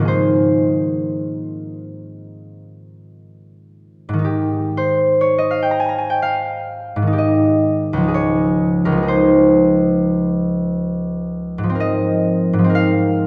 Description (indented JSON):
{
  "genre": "classical, solo harp piece",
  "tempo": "55-68 BPM",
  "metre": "4/4",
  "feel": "rubato",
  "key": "Ab major",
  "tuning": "A4 = 440 Hz",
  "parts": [
    { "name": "concert harp", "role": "solo", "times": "0.0-13.3 s", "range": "Db2 to Bb5", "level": "-18 LUFS", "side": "equal", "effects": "none" }
  ],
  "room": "wet concert hall reverb, RT60 2.2 s",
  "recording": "none",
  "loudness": "-17 LUFS",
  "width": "mono",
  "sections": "0.0-4.3 A section; 4.3-13.3 A section",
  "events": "none",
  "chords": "0.1 Abadd9; 4.3 Abmaj7; 8.1 Dbmaj9; 11.8 Ab69"
}